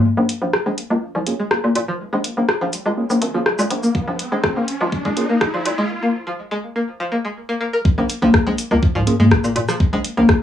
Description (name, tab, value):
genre	minimal techno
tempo	123 BPM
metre	4/4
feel	straight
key	Bb minor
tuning	A4 = 438 Hz
part	riser	sound effects	0.8-5.9 s	none	-28 LUFS	left 1 dB	none
part	string-like resonator pluck	riff	0.2-10.2 s	F3 to Bb4	-22 LUFS	left 1 dB	chorus, sidechain pumping, tape echo
part	hollow knocking FM bass	bass	0.2-10.2 s	Ab1 to Bb2	-22 LUFS	equal	sidechain pumping, high-pass filter
part	garage drum kit	drums	0.3-10.4 s	cabasa, hi-hat, rim click	-21 LUFS	left 1 dB	cassette tape
part	percussive organ stab	stabs	1.3-5.2, 9.1 s	Bb3 to Ab4	-24 LUFS	right 3 dB	chorus, tape echo
part	electronic kick drum	drums	3.9-10.4 s	none	-18 LUFS	equal	cassette tape
part	electronic congas and toms	percussion	8.2-10.3 s	none	-16 LUFS	left 1 dB	cassette tape, tape echo
room	wet booth ambience, RT60 0.2 s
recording	home recording on cassette, high-pass filter, small room ambience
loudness	-17 LUFS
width	side -10 dB against mid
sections	0.0-7.9 A section; 7.9-10.4 B section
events	build-up 0.0-7.9; filter sweep on synth pluck 0.0-7.9; filter sweep on synth stab 0.0-7.9; riser 0.8-5.9; break 5.9-7.9; drop 7.9-10.4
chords	0.0 Bbm7; 7.9 Bb7(no3)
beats	| 0.05 0.53 1.02 1.51 | 2.00 2.48 2.97 3.46 | 3.95 4.44 4.92 5.41 | 5.90 6.39 6.88 7.36 | 7.85 8.34 8.83 9.31 | 9.80 10.29